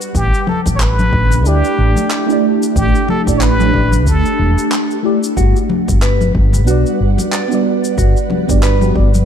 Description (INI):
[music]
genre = sunset chillout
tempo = 92 BPM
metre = 4/4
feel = swing 58% on 16ths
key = unclear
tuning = A4 = 440 Hz
[part]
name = ethereal airy pad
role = sustained chords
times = 0.0-9.2 s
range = G3 to F#5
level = -19 LUFS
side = right 1 dB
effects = ensemble chorus, built-in reverb
[part]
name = electronic shaker and handclaps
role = drums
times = 0.0-9.2 s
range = none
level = -25 LUFS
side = equal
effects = studio reverb
[part]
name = woody fretless electric bass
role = bass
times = 0.1-9.2 s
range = E1 to D2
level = -14 LUFS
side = equal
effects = none
[part]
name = electronic kick drum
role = drums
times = 0.1-9.1 s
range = none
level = -17 LUFS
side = equal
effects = studio reverb
[part]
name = trumpet with plunger mute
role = melody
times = 0.2-4.7 s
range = G4 to C#5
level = -20 LUFS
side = equal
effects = tape echo
[part]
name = congas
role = percussion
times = 0.5-9.2 s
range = none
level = -21 LUFS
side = left 5 dB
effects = none
[part]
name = mellow FM electric piano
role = accompaniment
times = 1.4-9.1 s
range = G3 to D5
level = -19 LUFS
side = moving between left 3 dB and right 6 dB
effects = chorus, phaser, auto-pan, tape echo
[part]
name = mellow electric guitar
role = arpeggios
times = 5.4-8.9 s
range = F#4 to D5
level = -22 LUFS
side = right 1 dB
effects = phaser, tape echo
[sound]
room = light reverb, digital ambience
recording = dark, warm production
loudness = -11 LUFS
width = side -8 dB against mid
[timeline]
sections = 0.0-9.2 A section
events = none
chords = 0.2 A7sus4; 5.4 Gmaj7